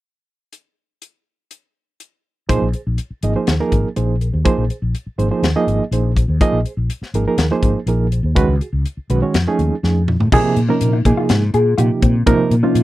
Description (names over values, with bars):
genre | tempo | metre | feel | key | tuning
electric jazz fusion | 123 BPM | 4/4 | straight | Bb minor | A4 = 440 Hz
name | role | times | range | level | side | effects
crisp fusion drum kit | drums | 0.5-12.8 s | crash cymbal, hi-hat, kick drum, snare drum, toms | -19 LUFS | left 1 dB | none
barky reed electric piano | accompaniment | 2.5-12.8 s | C3 to Eb5 | -18 LUFS | right 4 dB | overdrive, fast tremolo
mellow fretless electric bass | bass | 2.5-12.8 s | Ab1 to Bb2 | -17 LUFS | left 1 dB | lush chorus
mellow electric guitar | stabs | 10.3-12.8 s | C4 to Ab4 | -21 LUFS | left 4 dB | wide subtle chorus
room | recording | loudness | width
light reverb | dry, close 1970s-style studio recording | -15 LUFS | side -16 dB against mid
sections
0.5-2.5 A section; 2.5-10.3 B section; 10.3-12.8 C section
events
drum fill 9.8-10.3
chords
0.5 N.C.; 2.5 Bb9sus4; 8.4 Db9sus4; 9.3 F7alt; 10.3 Bbm9